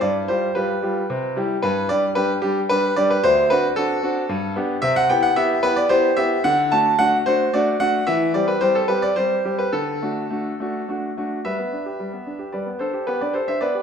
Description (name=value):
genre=classical-period piano sonatina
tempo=111 BPM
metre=3/4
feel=rubato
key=G major from 4.8 s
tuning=A4 = 440 Hz
part: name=clear grand piano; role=solo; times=0.0-13.8 s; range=D2 to A5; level=-18 LUFS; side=equal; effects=none
room=wet recital hall reverb, RT60 1.5 s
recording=minimal, uncompressed stereo recording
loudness=-18 LUFS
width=side -7 dB against mid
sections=0.0-11.4 A section; 11.4-13.8 B section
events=none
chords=0.0 G7; 1.1 C; 1.6 G5; 3.2 D7; 4.3 G; 4.8 Cmaj7; 6.4 D; 8.1 C/E; 9.7 D; 11.4 G; 13.1 G/B